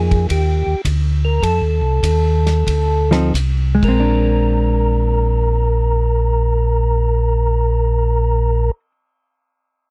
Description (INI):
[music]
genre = soul jazz organ trio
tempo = 79-111 BPM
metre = 4/4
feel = swing 68% on 8ths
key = Bb mixolydian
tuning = A4 = 438 Hz
[part]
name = percussive tonewheel organ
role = melody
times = 0.0-8.7 s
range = G4 to Bb4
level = -23 LUFS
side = equal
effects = slow rotary speaker
[part]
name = hollow-body jazz guitar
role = accompaniment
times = 0.0-8.9 s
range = F3 to A4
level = -22 LUFS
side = equal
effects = none
[part]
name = mellow tonewheel organ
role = bass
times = 0.0-8.7 s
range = Bb1 to F2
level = -18 LUFS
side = equal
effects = slow rotary speaker
[part]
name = warm soul drum kit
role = drums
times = 0.1-3.9 s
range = crash cymbal, hi-hat, kick drum, ride cymbal, snare drum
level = -28 LUFS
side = equal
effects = none
[sound]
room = little or no reverb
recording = dry, close 1970s-style studio recording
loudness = -17 LUFS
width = mono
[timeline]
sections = 0.0-4.1 A section; 4.1-9.9 B section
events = slowing down 0.0-4.1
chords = 0.0 Cm11 (rootless); 1.4 F7; 3.7 Bb9